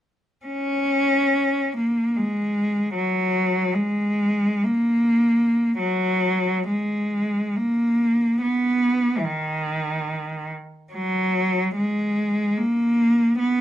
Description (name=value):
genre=classical, free, expressive piece for unaccompanied cello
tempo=44-78 BPM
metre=3/4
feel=rubato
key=F# major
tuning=A4 = 441 Hz
part: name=clear cello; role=solo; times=0.5-13.6 s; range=D#3 to C#4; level=-20 LUFS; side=equal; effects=none
room=light reverb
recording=minimal, uncompressed stereo recording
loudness=-20 LUFS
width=side -12 dB against mid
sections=0.5-5.8 A section; 5.8-13.6 B section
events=none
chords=none